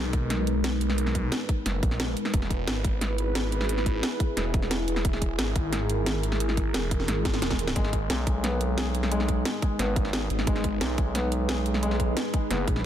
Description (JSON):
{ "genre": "dark technical drum and bass", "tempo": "177 BPM", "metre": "4/4", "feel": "straight", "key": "G# minor", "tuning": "A4 = 440 Hz", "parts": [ { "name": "dark analog pad", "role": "sustained chords", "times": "0.0-12.9 s", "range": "G#3 to B4", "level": "-32 LUFS", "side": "right 1 dB", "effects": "chorus, sidechain pumping" }, { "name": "phased detuned saw bass", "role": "bass", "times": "0.0-8.1, 10.3-12.9 s", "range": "E1 to B1", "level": "-29 LUFS", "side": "equal", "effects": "phaser, tube saturation" }, { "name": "drum and bass drum kit", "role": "drums", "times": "0.1-12.8 s", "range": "hi-hat, snare drum", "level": "-30 LUFS", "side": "equal", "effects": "overdrive" }, { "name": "electronic kick drum", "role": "drums", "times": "0.1-12.7 s", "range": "none", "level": "-27 LUFS", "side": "equal", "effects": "overdrive" }, { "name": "swell", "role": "sound effects", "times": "7.2-7.8 s", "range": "none", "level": "-38 LUFS", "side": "left 1 dB", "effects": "none" }, { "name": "felt-muted upright piano", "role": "arpeggios", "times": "7.8-12.6 s", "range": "G#3 to G#4", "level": "-32 LUFS", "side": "left 2 dB", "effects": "vintage 12-bit sampler grit, sidechain pumping, dub echo" }, { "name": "growling FM bass", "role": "bass", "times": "8.1-12.7 s", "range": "F#1 to B1", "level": "-28 LUFS", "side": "equal", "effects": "none" } ], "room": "light reverb, digital ambience", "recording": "dense, heavily limited modern master", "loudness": "-24 LUFS", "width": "side -10 dB against mid", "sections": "0.0-12.9 A section", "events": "swell 7.2-7.8; drum fill 7.3-7.8", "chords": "0.0 G#m; 2.3 E; 7.8 G#m" }